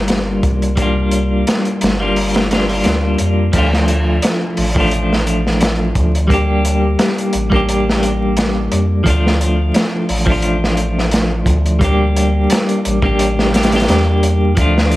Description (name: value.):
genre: trip hop.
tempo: 87 BPM.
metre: 4/4.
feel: swing 54% on 16ths.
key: D minor.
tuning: A4 = 440 Hz.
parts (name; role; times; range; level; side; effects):
clean electric guitar; accompaniment; 0.0-15.0 s; F3 to G4; -16 LUFS; equal; tremolo, tape echo.
soft dub sub bass; bass; 0.0-15.0 s; G1 to F2; -17 LUFS; equal; none.
crunchy breakbeat drum kit; drums; 0.1-15.0 s; crash cymbal, hi-hat, kick drum, snare drum; -18 LUFS; equal; none.
room: light reverb, small room ambience.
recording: vinyl crackle.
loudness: -12 LUFS.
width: side -16 dB against mid.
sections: 0.0-3.5 A section; 3.5-15.0 B section.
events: none.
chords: 0.0 C9sus4; 3.5 Dm; 6.3 Gm; 9.1 Dm; 11.8 Gm.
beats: 0.09 | 0.78 1.47 2.16 2.85 | 3.54 4.23 4.92 5.61 | 6.30 6.99 7.68 8.37 | 9.06 9.75 10.44 11.13 | 11.81 12.51 13.20 13.88 | 14.57.